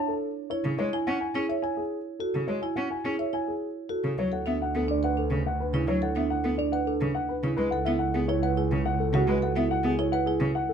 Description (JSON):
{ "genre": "classical, minimalist pattern music", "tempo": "106 BPM", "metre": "3/4", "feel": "straight", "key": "A major", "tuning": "A4 = 441 Hz", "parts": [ { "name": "dark grand piano", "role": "melody", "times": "0.0-10.7 s", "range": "G#4 to A5", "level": "-30 LUFS", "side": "left 7 dB", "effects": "none" }, { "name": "marimba with soft mallets", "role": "arpeggios", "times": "0.0-10.5 s", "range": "D4 to C#5", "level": "-30 LUFS", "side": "right 7 dB", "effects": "none" }, { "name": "rich cello", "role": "accompaniment", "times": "0.6-10.5 s", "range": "C#3 to C#4", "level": "-30 LUFS", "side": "equal", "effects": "none" }, { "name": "rich double bass", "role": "bass", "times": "4.2-10.7 s", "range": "C#2 to D2", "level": "-30 LUFS", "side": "right 4 dB", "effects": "none" } ], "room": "light reverb", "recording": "close, detailed microphones", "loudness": "-25 LUFS", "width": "side -7 dB against mid", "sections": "0.0-4.2 A section; 4.2-10.7 B section", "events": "none", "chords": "0.0 Dmaj7(no3); 0.8 Amaj7 (rootless); 4.2 D6; 7.6 A69/C# (rootless)", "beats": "0.22 | 0.79 1.35 1.92 | 2.48 3.05 3.62 | 4.18 4.75 5.31 | 5.88 6.45 7.01 | 7.58 8.14 8.71 | 9.28 9.84 10.41" }